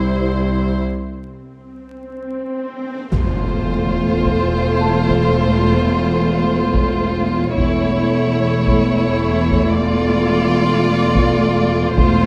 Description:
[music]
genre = cinematic, suspense film score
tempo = 54 BPM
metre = 4/4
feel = straight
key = unclear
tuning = A4 = 440 Hz
[part]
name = rich studio violin section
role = melody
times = 0.0-12.3 s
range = C5 to D5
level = -27 LUFS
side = equal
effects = none
[part]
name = warm studio viola section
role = accompaniment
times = 0.0-12.3 s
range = G3 to E4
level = -23 LUFS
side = equal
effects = none
[part]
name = rich chamber cello section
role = bass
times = 0.0-12.3 s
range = C2 to E2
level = -23 LUFS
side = equal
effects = none
[part]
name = rich chamber double bass section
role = bass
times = 0.0-12.3 s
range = E1 to C2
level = -24 LUFS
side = equal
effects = none
[part]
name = swell and impact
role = sound effects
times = 1.7-7.6 s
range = none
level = -28 LUFS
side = equal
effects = none
[part]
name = music box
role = texture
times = 0.0-8.1 s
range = G4 to A5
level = -32 LUFS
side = equal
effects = none
[part]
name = rich chamber violin section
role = second line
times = 3.1-12.3 s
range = E4 to F4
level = -24 LUFS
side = equal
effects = none
[part]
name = taiko ensemble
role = drums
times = 3.1-12.3 s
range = none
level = -24 LUFS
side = equal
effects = none
[sound]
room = light reverb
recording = dark, warm production, vinyl crackle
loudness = -17 LUFS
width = mono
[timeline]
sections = 0.0-3.1 A section; 3.1-12.3 B section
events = break 0.8-3.1; swell 1.7-3.1; impact 3.1-7.6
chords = 0.0 C; 3.1 F/E

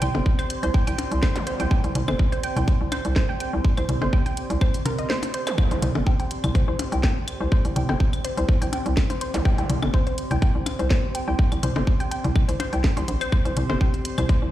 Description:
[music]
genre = minimal techno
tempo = 124 BPM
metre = 4/4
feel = swing 53% on 16ths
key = unclear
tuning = A4 = 437 Hz
[part]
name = resonant blip pluck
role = riff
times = 0.0-14.4 s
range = Bb4 to C6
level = -31 LUFS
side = equal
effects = chorus, sidechain pumping, dub echo
[part]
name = hollow knocking FM bass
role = bass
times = 0.0-14.5 s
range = G1 to C2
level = -24 LUFS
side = equal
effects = sidechain pumping
[part]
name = garage drum kit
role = drums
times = 0.0-14.4 s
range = hi-hat, snare drum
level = -32 LUFS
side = equal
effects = none
[part]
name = electronic toms, percussion blips and claves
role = percussion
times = 0.0-14.3 s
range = none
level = -30 LUFS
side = left 2 dB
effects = overdrive, digital delay
[part]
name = bubbling stepped-filter texture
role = texture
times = 0.0-14.5 s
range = C5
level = -38 LUFS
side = right 5 dB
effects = chorus, built-in reverb, sidechain pumping
[part]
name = warbly tape-like pad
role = texture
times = 0.0-14.5 s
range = C4 to C6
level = -33 LUFS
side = right 1 dB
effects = chorus, built-in reverb, sidechain pumping
[part]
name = electronic kick drum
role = drums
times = 0.3-14.4 s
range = none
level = -20 LUFS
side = equal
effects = none
[part]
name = zap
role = sound effects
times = 1.4-1.5, 5.5-5.6, 9.3-9.5 s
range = none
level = -33 LUFS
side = equal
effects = none
[sound]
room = light reverb, digital ambience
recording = played on a big sound system in a bare room, large studio reverb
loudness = -20 LUFS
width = side -14 dB against mid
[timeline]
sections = 0.0-14.5 A section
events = break 5.1-5.6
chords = 0.0 C5

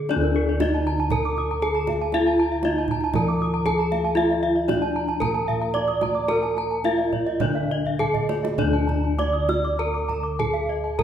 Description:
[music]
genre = Balinese gamelan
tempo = 100-118 BPM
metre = 4/4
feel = straight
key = D pelog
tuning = A4 = 440 Hz
[part]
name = gamelan-type bronze metallophone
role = melody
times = 0.0-11.0 s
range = D4 to D5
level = -24 LUFS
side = right 1 dB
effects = none
[part]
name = gamelan-type bossed gongs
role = bass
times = 0.0-11.0 s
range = D2 to Bb4-40c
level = -26 LUFS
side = left 1 dB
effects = none
[part]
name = gamelan-type bronze metallophone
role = arpeggios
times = 0.1-11.0 s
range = A4-45c to E6+50c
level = -28 LUFS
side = left 4 dB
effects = none
[part]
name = kendang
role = percussion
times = 0.1-11.0 s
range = none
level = -30 LUFS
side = right 3 dB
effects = none
[part]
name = gamelan-type bronze metallophone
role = arpeggios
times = 0.2-10.7 s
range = Bb4-40c to Eb6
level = -31 LUFS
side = right 4 dB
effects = none
[sound]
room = wet recital hall reverb, RT60 1.4 s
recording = recorded in a church or concert hall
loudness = -20 LUFS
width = side -9 dB against mid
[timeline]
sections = 0.0-8.6 A section; 8.6-11.0 B section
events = drum fill 7.8-8.6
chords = none

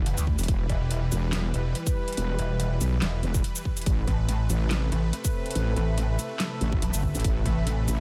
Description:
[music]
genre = heavy wobble dubstep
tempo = 142 BPM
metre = 4/4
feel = swing 54% on 16ths, half-time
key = E minor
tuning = A4 = 440 Hz
[part]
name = supersaw pad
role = sustained chords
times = 0.0-8.0 s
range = C3 to B4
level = -38 LUFS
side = equal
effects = sidechain pumping
[part]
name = wobble bass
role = bass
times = 0.0-8.0 s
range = E1 to B1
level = -28 LUFS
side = equal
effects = chorus, overdrive
[part]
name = pulsing pluck wobble bass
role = bass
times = 0.1-7.9 s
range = E1 to D2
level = -28 LUFS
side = equal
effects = chorus, overdrive
[part]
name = dubstep drum kit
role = drums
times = 0.1-8.0 s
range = handclaps, hi-hat, shaker, snare drum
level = -35 LUFS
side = equal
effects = none
[part]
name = electronic kick drum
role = drums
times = 0.3-7.5 s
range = none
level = -30 LUFS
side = equal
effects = none
[part]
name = warm brass ensemble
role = stabs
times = 1.5-6.2 s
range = G3 to B4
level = -38 LUFS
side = equal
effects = tape echo
[part]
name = deep dark ambient pad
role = texture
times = 5.1-8.0 s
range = A4 to B5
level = -42 LUFS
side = equal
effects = chorus, built-in reverb, sidechain pumping
[sound]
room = little or no reverb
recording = none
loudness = -26 LUFS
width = mono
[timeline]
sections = 0.0-8.0 A section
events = none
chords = 0.0 Em; 3.9 Amadd9

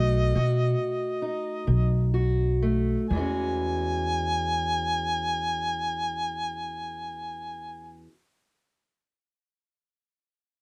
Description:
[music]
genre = acoustic country blues, solo or duo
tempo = 40-48 BPM (dotted quarters)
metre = 12/8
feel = straight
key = E major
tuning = A4 = 440 Hz
[part]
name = warm harmonica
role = melody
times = 0.0-8.0 s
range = D#5 to G#5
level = -32 LUFS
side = equal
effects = none
[part]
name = fingerpicked steel-string acoustic guitar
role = accompaniment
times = 0.0-8.2 s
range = E2 to F#4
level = -33 LUFS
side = equal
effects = none
[part]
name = upright bass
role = bass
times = 0.0-8.0 s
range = B1 to B2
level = -29 LUFS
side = equal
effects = none
[sound]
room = light reverb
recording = close, detailed microphones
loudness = -27 LUFS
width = mono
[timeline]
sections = 0.0-3.1 A section; 3.1-9.1 B section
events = slowing down 0.0-3.1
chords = 0.0 B7; 3.1 E69

